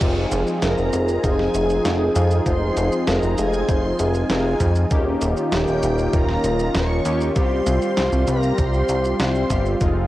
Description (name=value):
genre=synthwave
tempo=98 BPM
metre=4/4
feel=straight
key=F minor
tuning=A4 = 440 Hz
part: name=warm analog pad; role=sustained chords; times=0.0-10.1 s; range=Eb3 to Ab4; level=-24 LUFS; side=equal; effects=chorus, vintage 12-bit sampler grit, sidechain pumping
part: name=analog synth brass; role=stabs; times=0.0-10.1 s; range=G3 to C5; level=-26 LUFS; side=left 1 dB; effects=chorus
part: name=chorused synth bass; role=bass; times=0.0-10.1 s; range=Eb1 to F2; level=-21 LUFS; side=equal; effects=none
part: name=clean 12-bit digital drum machine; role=drums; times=0.0-9.9 s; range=crash cymbal, hi-hat, shaker, snare drum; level=-28 LUFS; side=equal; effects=none
part: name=electronic kick drum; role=drums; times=0.0-9.9 s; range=none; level=-22 LUFS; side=equal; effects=none
part: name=soft octave-layered synth lead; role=melody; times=0.6-9.6 s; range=G4 to Db5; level=-26 LUFS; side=left 1 dB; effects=chorus, cassette tape, tape echo
part: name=string machine, violins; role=second line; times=0.6-9.6 s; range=G5 to Db6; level=-33 LUFS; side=equal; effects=ensemble chorus, tape echo
room=moderate spring reverb, RT60 2.4 s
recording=home recording on cassette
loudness=-17 LUFS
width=side -15 dB against mid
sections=0.0-10.1 A section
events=none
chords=0.0 Fm7; 4.9 Eb7; 7.4 Csus4